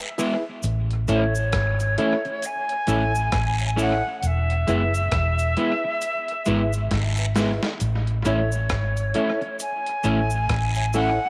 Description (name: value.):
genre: roots reggae.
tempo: 67 BPM.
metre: 4/4.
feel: swing 60% on 16ths.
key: A major.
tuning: A4 = 440 Hz.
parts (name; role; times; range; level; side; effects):
bright reedy concert flute; melody; 0.0-11.3 s; C#5 to G#5; -29 LUFS; equal; tape echo.
bright reed electric piano; stabs; 0.0-11.2 s; E4 to E5; -31 LUFS; equal; fast tremolo.
dusty soul sampler-style drum kit; drums; 0.0-11.2 s; hi-hat, kick drum, rim click, snare drum; -33 LUFS; equal; overdrive, tape echo.
electric guitar at the edge of break-up; accompaniment; 0.2-11.1 s; G#3 to E4; -30 LUFS; equal; lush chorus, tape echo.
cabasa and guiro; percussion; 0.2-11.2 s; none; -37 LUFS; equal; none.
vintage muted fingered electric bass; bass; 0.6-11.2 s; E1 to A1; -26 LUFS; equal; none.
room: light reverb, digital ambience.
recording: none.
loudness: -23 LUFS.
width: mono.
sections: 0.0-11.3 A section.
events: drum fill 6.9-7.8.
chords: 0.0 E; 0.6 A; 4.2 E; 7.8 A.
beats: | 0.64 1.53 2.43 3.33 | 4.22 5.12 6.01 6.91 | 7.80 8.70 9.60 10.49.